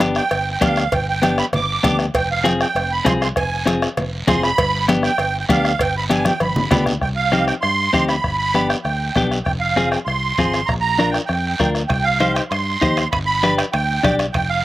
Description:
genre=latin, cumbia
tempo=197 BPM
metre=4/4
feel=straight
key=C minor from 7.0 s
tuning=A4 = 440 Hz
part: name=clean electric guitar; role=accompaniment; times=0.0-14.3 s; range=B3 to D5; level=-19 LUFS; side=left 2 dB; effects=none
part: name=fingered electric bass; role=bass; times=0.0-14.6 s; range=F1 to G2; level=-24 LUFS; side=equal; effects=none
part: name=bombo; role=percussion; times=0.0-14.5 s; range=none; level=-25 LUFS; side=left 2 dB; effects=none
part: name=congas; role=percussion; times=0.0-14.5 s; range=none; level=-25 LUFS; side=left 1 dB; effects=none
part: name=cowbell and timbales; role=percussion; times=0.0-6.9, 11.9-14.5 s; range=none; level=-26 LUFS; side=right 3 dB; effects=none
part: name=guiro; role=percussion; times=0.0-14.6 s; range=none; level=-30 LUFS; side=right 3 dB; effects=none
part: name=musette accordion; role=second line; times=0.2-14.6 s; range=F5 to D6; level=-20 LUFS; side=right 3 dB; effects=none
room=little or no reverb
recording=recorded outdoors, with no room sound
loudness=-16 LUFS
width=side -16 dB against mid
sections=0.0-7.0 A section; 7.0-14.6 B section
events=accordion solo 0.0-7.0, 7.0-14.6; drum fill 6.1-7.0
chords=0.0 G; 2.1 Fm; 4.6 G; 7.0 Cm; 8.2 G; 9.5 Fm; 10.7 Bb; 11.9 Cm; 13.1 G

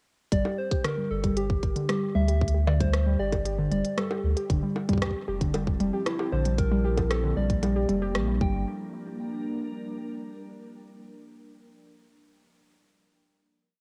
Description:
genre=IDM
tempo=115 BPM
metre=4/4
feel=straight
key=G dorian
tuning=A4 = 442 Hz
part: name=soft struck synth lead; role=melody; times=0.3-8.7 s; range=E4 to G5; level=-36 LUFS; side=equal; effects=chorus, cassette tape, analog delay
part: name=warbly dusty pluck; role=arpeggios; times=0.3-8.7 s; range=D3 to G4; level=-31 LUFS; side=equal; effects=chorus, cassette tape, analog delay
part: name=warm sub bass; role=bass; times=0.3-8.7 s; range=F1 to D2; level=-29 LUFS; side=equal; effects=none
part: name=electronic kick drum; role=drums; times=0.3-8.5 s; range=none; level=-30 LUFS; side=equal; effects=cassette tape
part: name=organic electronic drum kit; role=drums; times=0.3-8.3 s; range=bongos, hi-hat, rim click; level=-36 LUFS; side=equal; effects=cassette tape
part: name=glassy FM pad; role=sustained chords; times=4.5-10.7 s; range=F3 to A5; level=-39 LUFS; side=equal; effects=ensemble chorus, built-in reverb, vintage 12-bit sampler grit, cassette tape
room=light reverb, digital ambience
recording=home recording on cassette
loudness=-27 LUFS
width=mono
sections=0.3-8.7 groove; 8.7-10.8 final chord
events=none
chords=0.3 G5; 4.5 Fmaj7; 8.4 Gm

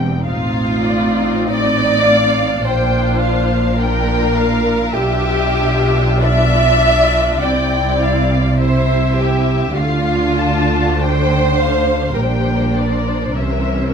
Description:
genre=classical, slow romantic movement for string orchestra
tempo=45-54 BPM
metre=4/4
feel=rubato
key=F major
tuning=A4 = 440 Hz
part: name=muted studio violin section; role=melody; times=0.0-13.9 s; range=D5 to A5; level=-23 LUFS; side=left 6 dB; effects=none
part: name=muted studio viola section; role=accompaniment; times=0.0-13.9 s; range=E3 to F4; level=-22 LUFS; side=right 1 dB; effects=none
part: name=muted studio cello section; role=bass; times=0.0-13.9 s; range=E2 to D3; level=-19 LUFS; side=right 2 dB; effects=none
part: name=muted studio double bass section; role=bass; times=0.0-13.9 s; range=E1 to D2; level=-20 LUFS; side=equal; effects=none
part: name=muted studio violin section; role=second line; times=0.3-13.9 s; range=F4 to E5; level=-17 LUFS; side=equal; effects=none
room=moderate recital hall reverb, RT60 1.5 s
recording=none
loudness=-13 LUFS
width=side -6 dB against mid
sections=0.0-13.9 A section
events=none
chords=0.3 F7/A; 2.7 Bb; 4.9 G7/B; 7.4 C; 9.8 Dm; 12.2 Gm/Bb; 13.4 C7b9

